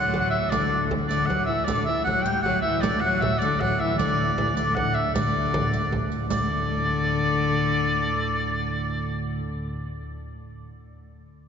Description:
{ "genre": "medieval dance", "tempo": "104 BPM (dotted quarters)", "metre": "6/8", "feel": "straight", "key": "D major", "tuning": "A4 = 440 Hz", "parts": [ { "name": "clear shawm", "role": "melody", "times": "0.0-9.4 s", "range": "D5 to G5", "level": "-26 LUFS", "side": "equal", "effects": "none" }, { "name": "celesta", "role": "second line", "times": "0.0-9.7 s", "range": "D6 to G6", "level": "-33 LUFS", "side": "right 2 dB", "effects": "none" }, { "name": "rich viola da gamba", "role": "second line", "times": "0.0-9.4 s", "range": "D3 to G3", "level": "-28 LUFS", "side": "left 4 dB", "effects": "none" }, { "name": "pipe organ, flutes", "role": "drone", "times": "0.0-9.4 s", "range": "D2 to A2", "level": "-31 LUFS", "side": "right 2 dB", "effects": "none" }, { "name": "frame drum", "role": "percussion", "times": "0.1-6.5 s", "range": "none", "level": "-32 LUFS", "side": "right 1 dB", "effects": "none" }, { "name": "riq", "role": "percussion", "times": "0.5-6.5 s", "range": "none", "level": "-34 LUFS", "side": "right 3 dB", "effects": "none" } ], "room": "wet cathedral reverb, RT60 5.7 s", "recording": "recorded in a church or concert hall, nothing above 7.7 kHz", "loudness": "-22 LUFS", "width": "side -7 dB against mid", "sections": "0.0-6.3 A section; 6.3-8.6 B section", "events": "none", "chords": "none", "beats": "| 0.52 1.10 | 1.68 2.26 | 2.84 3.42 | 4.00 4.58 | 5.15 5.73 | 6.31 6.88 | 7.46 8.03" }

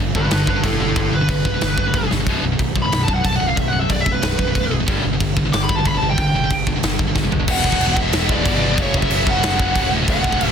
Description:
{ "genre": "heavy metal", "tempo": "184 BPM", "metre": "4/4", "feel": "straight", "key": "unclear", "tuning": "A4 = 440 Hz", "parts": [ { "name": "high-gain distorted guitar", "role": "riff", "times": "0.0-10.5 s", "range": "B1 to G3", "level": "-21 LUFS", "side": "equal", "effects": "distortion" }, { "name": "modern bright picked electric bass", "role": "bass", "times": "0.0-10.5 s", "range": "B0 to G1", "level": "-24 LUFS", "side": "equal", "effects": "none" }, { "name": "big rock drum kit", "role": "drums", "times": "0.1-10.5 s", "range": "crash cymbal, kick drum, snare drum, toms", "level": "-20 LUFS", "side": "equal", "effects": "none" }, { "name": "bluesy overdriven lead guitar", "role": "melody", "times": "0.2-10.5 s", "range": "D4 to D6", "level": "-22 LUFS", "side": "equal", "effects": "distortion" } ], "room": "studio ambience", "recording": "dense, heavily limited modern master", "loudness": "-16 LUFS", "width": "side -7 dB against mid", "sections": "0.0-7.5 A section; 7.5-10.5 B section", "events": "lead electric guitar solo 0.0-7.5; drum fill 2.1, 7.2-7.5", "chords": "0.0 G; 2.3 B5; 4.9 G5; 7.5 Em; 8.8 F#5; 9.9 D", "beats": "0.32 0.64 | 0.97 1.29 1.62 1.95 | 2.27 2.60 2.92 3.25 | 3.57 3.90 4.22 4.55 | 4.88 5.20 5.53 5.85 | 6.18 6.50 6.83 7.16 | 7.48 7.81 8.13 8.46 | 8.78 9.11 9.43 9.76 | 10.08 10.41" }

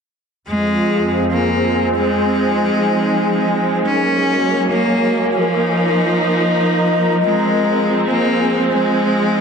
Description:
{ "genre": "dubstep", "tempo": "142 BPM", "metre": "4/4", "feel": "swing 54% on 16ths, half-time", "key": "F phrygian", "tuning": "A4 = 440 Hz", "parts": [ { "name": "clear cello", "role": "melody", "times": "0.5-9.4 s", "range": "F3 to Db4", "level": "-17 LUFS", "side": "equal", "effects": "vintage 12-bit sampler grit, dub echo" }, { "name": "warm studio string section", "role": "sustained chords", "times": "0.5-9.4 s", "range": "F2 to Eb4", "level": "-20 LUFS", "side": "right 2 dB", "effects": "low-pass filter" }, { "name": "airy breathy pad", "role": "texture", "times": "0.6-9.4 s", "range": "Eb4 to Bb5", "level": "-19 LUFS", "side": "left 2 dB", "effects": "chorus" } ], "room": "moderate lush hall reverb, RT60 2.7 s", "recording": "dense, heavily limited modern master", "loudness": "-14 LUFS", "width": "side -6 dB against mid", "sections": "0.5-9.4 A section", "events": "filter sweep on string section 0.5-9.4", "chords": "0.5 Fm; 3.9 Gbadd9; 5.6 Bbsus4/F; 7.2 Fm", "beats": "| 0.48 0.90 1.33 1.75 | 2.17 2.59 3.02 3.44 | 3.86 4.28 4.71 5.13 | 5.55 5.97 6.40 6.82 | 7.24 7.66 8.09 8.51 | 8.93 9.35" }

